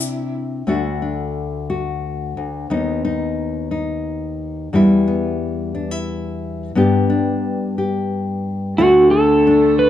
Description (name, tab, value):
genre	acoustic folk duo or small band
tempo	89 BPM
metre	3/4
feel	straight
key	D mixolydian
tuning	A4 = 440 Hz
part	clear cello	second line	0.0-0.3, 8.8-9.9 s	A3 to E4	-30 LUFS	right 8 dB	none
part	nylon-string guitar	accompaniment	0.0-9.9 s	D2 to G4	-18 LUFS	left 2 dB	none
part	pedal steel guitar	melody	8.8-9.9 s	F#4 to B4	-12 LUFS	right 1 dB	none
room	wet large studio reverb, RT60 1.2 s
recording	dark, warm production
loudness	-16 LUFS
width	side -11 dB against mid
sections	0.7-8.8 A section; 8.8-9.9 B section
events	none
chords	0.0 Cadd9; 0.7 D; 2.7 B/D#; 4.7 Em; 6.7 G; 8.8 D5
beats	| 0.66 1.34 2.01 | 2.69 3.36 4.04 | 4.71 5.39 6.07 | 6.74 7.42 8.10 | 8.78 9.45